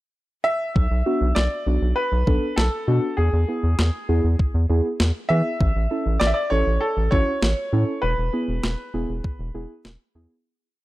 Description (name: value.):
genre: synth-pop.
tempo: 99 BPM.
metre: 4/4.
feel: straight.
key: unclear.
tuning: A4 = 440 Hz.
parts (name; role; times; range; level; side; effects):
clear concert grand piano; melody; 0.4-9.8 s; G#4 to E5; -25 LUFS; equal; tape echo.
round analog bass; bass; 0.8-10.3 s; E1 to E3; -21 LUFS; equal; none.
clean 12-bit digital drum machine; drums; 0.8-10.0 s; kick drum, snare drum; -22 LUFS; equal; none.
muted felt-like synth keys; accompaniment; 1.1-10.3 s; B3 to A4; -27 LUFS; right 1 dB; chorus.
room: little or no reverb.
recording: dry, gritty hardware recording.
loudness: -19 LUFS.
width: side -17 dB against mid.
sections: 0.0-0.8 pickup bar; 0.8-10.5 verse.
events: fade-out 8.0-10.5.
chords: 0.0 N.C.; 0.8 Bm; 3.2 E; 5.6 A; 8.0 E.